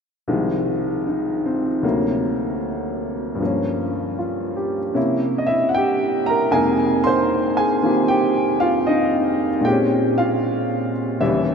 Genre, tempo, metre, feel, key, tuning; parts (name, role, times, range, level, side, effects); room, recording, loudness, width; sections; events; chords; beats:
solo jazz; 77 BPM; 4/4; swing 66% on 8ths; F minor; A4 = 440 Hz
warm upright piano; solo; 0.3-11.5 s; C2 to C6; -18 LUFS; equal
wet cathedral reverb, RT60 6.3 s; in a vast, echoing space; -18 LUFS; side -6 dB against mid
0.3-6.5 A section; 6.5-11.5 B section
0.3 Fm7/C; 1.8 D7b13; 3.4 Gm7b5; 5.0 C7b9; 6.5 Fm11; 9.6 Bbm9
| 0.28 1.06 1.84 2.62 | 3.40 4.18 4.96 5.75 | 6.53 7.31 8.09 8.87 | 9.65 10.43 11.21